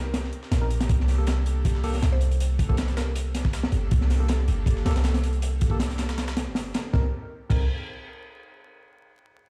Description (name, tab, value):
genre	drum and bass, jungle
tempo	159 BPM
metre	4/4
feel	straight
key	C dorian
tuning	A4 = 440 Hz
part	warm 808-style bass	bass	0.0-7.7 s	G1 to C2	-26 LUFS	equal	none
part	breakbeat sampler-style drum kit	drums	0.1-6.8 s	hi-hat, snare drum	-43 LUFS	equal	high-pass filter on snare, high-pass filter on hats
part	crunchy breakbeat drum kit	drums	0.1-7.6 s	crash cymbal, hi-hat, kick drum, snare drum	-30 LUFS	equal	none
part	mellow tine electric piano	stabs	0.6-7.6 s	Bb3 to Bb4	-40 LUFS	equal	overdrive, dub echo
part	mallet-like synth pluck	melody	2.1-3.3 s	Bb4 to C5	-42 LUFS	equal	chorus, phaser, dub echo
room	studio reverb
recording	played on a big sound system in a bare room, stone room reverb, vinyl crackle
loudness	-25 LUFS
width	mono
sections	0.0-6.9 A section; 6.9-8.4 B section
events	drop 0.0-6.9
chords	0.0 Cm7; 0.9 Gmadd9; 6.9 Cm7